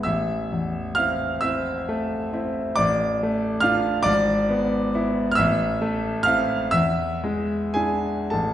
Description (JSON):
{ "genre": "classical, romantic nocturne for solo piano", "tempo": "35-48 BPM (dotted quarters)", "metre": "6/8", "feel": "rubato", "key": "A minor", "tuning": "A4 = 440 Hz", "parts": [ { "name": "clear concert grand piano", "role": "solo", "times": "0.0-8.5 s", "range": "G#1 to F6", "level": "-20 LUFS", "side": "equal", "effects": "none" } ], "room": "wet recital hall reverb, RT60 1.6 s", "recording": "heard from further back in the room, nothing above 11.0 kHz", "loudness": "-20 LUFS", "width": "side -11 dB against mid", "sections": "0.0-8.5 A section", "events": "none", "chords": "0.1 Am; 2.8 Dm/A; 4.1 E7/G#; 5.4 Am; 6.7 E7" }